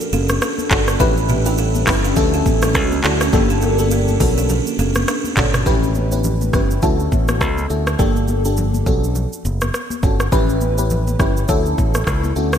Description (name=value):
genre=afrobeats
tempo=103 BPM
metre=4/4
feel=swing 58% on 16ths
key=D major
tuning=A4 = 438 Hz
part: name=granular cloud pad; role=sustained chords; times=0.0-5.6 s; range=D3 to A4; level=-26 LUFS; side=equal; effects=built-in reverb, wide subtle chorus
part: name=afro-pop drum kit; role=drums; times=0.0-12.6 s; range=handclaps, hi-hat, kick drum, rim click, shaker, toms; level=-20 LUFS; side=equal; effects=none
part: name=buzzing kalimba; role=riff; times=0.1-5.5 s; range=B3 to D5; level=-24 LUFS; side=right 4 dB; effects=ping-pong delay
part: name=modern bright fingered electric bass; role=bass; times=0.1-12.6 s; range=F#1 to D2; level=-19 LUFS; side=equal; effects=none
part: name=congas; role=percussion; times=0.1-12.3 s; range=none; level=-28 LUFS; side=left 2 dB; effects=none
part: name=FM electric piano with soft pad layer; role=accompaniment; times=0.7-12.5 s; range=Bb3 to B4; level=-21 LUFS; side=left 2 dB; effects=chorus, phaser
room=moderate lush hall reverb, RT60 2.1 s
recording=bright 1980s-style digital production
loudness=-15 LUFS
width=side -8 dB against mid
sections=0.0-5.7 A section; 5.7-12.6 B section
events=none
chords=0.0 Bm7; 1.0 A7; 2.2 Dmaj7; 3.3 Gmadd9; 4.2 Bm7; 5.7 A7; 6.8 Dmaj7; 8.0 Gmadd9; 8.9 Bm7; 10.3 A7; 11.5 Dmaj7